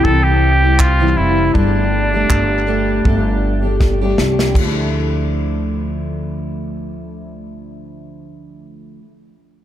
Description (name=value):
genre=acoustic pop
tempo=80 BPM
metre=4/4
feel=swing 55% on 16ths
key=D minor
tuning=A4 = 440 Hz
part: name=clear trumpet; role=melody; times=0.0-3.8 s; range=D4 to A4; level=-18 LUFS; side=right 1 dB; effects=analog delay
part: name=fingerpicked steel-string acoustic guitar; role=accompaniment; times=0.0-9.1 s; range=C3 to G4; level=-20 LUFS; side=left 1 dB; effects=double-tracked left and right, analog delay
part: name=natural country drum kit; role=drums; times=0.0-4.7 s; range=crash cymbal, handclaps, kick drum, snare drum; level=-18 LUFS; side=equal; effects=none
part: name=upright bass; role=bass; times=0.1-9.0 s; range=F1 to D2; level=-18 LUFS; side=equal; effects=none
room=light reverb, small room reverb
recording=echo-heavy mix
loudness=-13 LUFS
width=side -11 dB against mid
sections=0.0-4.5 A section; 4.5-7.6 B section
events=drum fill 3.8-4.5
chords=0.0 C; 1.5 Gsus2; 4.5 Dmadd9